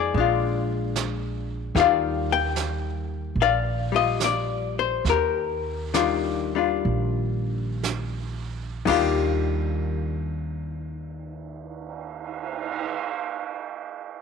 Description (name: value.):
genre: jazz ballad.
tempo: 57-75 BPM.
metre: 4/4.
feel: swing 67% on 8ths.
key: Eb major.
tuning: A4 = 440 Hz.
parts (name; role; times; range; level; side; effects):
archtop guitar, miked and amplified; accompaniment; 0.0-13.0 s; Eb3 to G5; -24 LUFS; left 10 dB; none.
upright bass; bass; 0.0-12.9 s; Bb1 to F2; -28 LUFS; right 3 dB; none.
vintage brush drum kit; drums; 0.2-12.9 s; brushed snare drum, crash cymbal, cymbal swell, hi-hat, kick drum, snare drum; -32 LUFS; right 10 dB; none.
room: moderate plate reverb, RT60 2.2 s.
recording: 1960s-style stereo with parts hard left and right.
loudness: -23 LUFS.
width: side -6 dB against mid.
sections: 0.0-8.8 A section; 8.8-13.1 B section.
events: slowing down 1.7-8.8.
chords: 0.1 Bb7; 1.7 Ebmaj9.